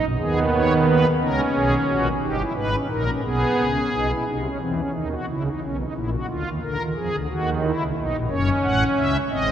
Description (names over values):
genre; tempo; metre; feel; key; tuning
classical, baroque-style 3-part fugue for pipe organ; 59 BPM (dotted quarters); 6/8; straight; G# minor; A4 = 440 Hz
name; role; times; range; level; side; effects
pipe organ, strings celeste; solo; 0.0-9.5 s; F#1 to F#5; -20 LUFS; right 1 dB; none
room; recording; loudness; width
wet cathedral reverb, RT60 5.0 s; none; -20 LUFS; side -10 dB against mid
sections
0.0-4.3 A section; 4.3-9.5 B section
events
none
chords
0.2 G#m/D#; 1.2 G#m11; 2.2 D#7/G; 3.2 G#m/B; 4.3 Cdim; 5.3 C#m; 6.3 A#7/D; 7.3 D#m; 8.3 F#m7